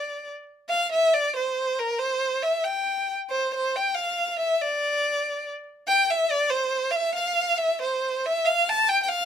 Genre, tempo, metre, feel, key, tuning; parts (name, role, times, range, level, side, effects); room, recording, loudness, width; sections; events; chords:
mexican folk; 93 BPM (dotted quarters); 6/8; straight; A4 = 440 Hz
rich violin; solo; 0.0-9.3 s; Bb4 to A5; -22 LUFS; equal
light reverb; close, detailed microphones; -22 LUFS; side -8 dB against mid
0.0-8.5 A section